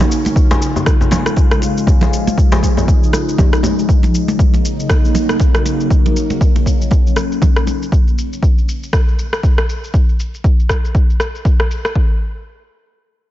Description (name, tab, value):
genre	afro house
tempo	119 BPM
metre	4/4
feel	swing 58% on 16ths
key	Eb minor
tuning	A4 = 440 Hz
part	ethereal airy pad	sustained chords	0.0-7.9 s	Db3 to F4	-19 LUFS	left 1 dB	ensemble chorus, built-in reverb, phaser, sidechain pumping
part	electronic shaker and rim click	drums	0.0-11.9 s	none	-23 LUFS	equal	overdrive, low-pass filter on perc, low-pass filter on snare
part	congas	percussion	0.0-7.8 s	none	-21 LUFS	right 3 dB	none
part	djembe	percussion	0.0-3.8 s	none	-22 LUFS	left 2 dB	none
part	electronic kick drum	drums	0.4-12.1 s	none	-13 LUFS	equal	none
room	little or no reverb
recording	nothing above 7.7 kHz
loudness	-12 LUFS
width	side -14 dB against mid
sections	0.0-12.0 A section; 12.0-13.3 B section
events	filter sweep on drum 0.0-12.0; filter sweep on ambient pad 0.0-7.9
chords	0.0 Db; 3.9 Ebm7; 7.9 N.C.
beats	0.36 0.86 1.37 | 1.87 2.38 2.88 3.38 | 3.89 4.39 4.90 5.40 | 5.91 6.41 6.91 7.42 | 7.92 8.43 8.93 9.43 | 9.94 10.44 10.95 11.45 | 11.96